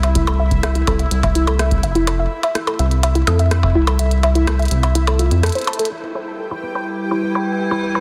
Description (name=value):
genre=IDM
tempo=125 BPM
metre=4/4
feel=straight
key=unclear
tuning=A4 = 440 Hz
part: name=warbly dusty pluck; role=arpeggios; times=0.0-8.0 s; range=E4 to A5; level=-24 LUFS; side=equal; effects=chorus, delay
part: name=rubbery square bass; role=bass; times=0.0-5.5 s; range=F1 to F2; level=-18 LUFS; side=equal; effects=none
part: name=glitchy drum kit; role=drums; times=0.0-8.0 s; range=hi-hat, percussion blips, rim click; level=-26 LUFS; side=equal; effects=low-pass filter on hats, studio reverb, low-pass filter on perc, soft clipping on snare, low-pass filter on snare, delay
part: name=bubbling stepped-filter texture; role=texture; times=0.0-8.0 s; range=E4 to G5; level=-31 LUFS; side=equal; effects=chorus, built-in reverb
part: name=electronic kick drum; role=drums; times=0.2-3.7 s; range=none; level=-24 LUFS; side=equal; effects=studio reverb
part: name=icy glass pad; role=sustained chords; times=6.4-8.0 s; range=G3 to B4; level=-24 LUFS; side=equal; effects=chorus, built-in reverb
room=light reverb, digital ambience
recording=dense, heavily limited modern master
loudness=-17 LUFS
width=mono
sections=0.0-5.9 A section; 5.9-8.0 B section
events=kick drops out 4.0-5.9; band accent 5.4; drum fill 5.7; filter sweep on drum 5.9-8.0; filter sweep on synth pluck 5.9-8.0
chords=0.0 Fmaj7; 5.9 Em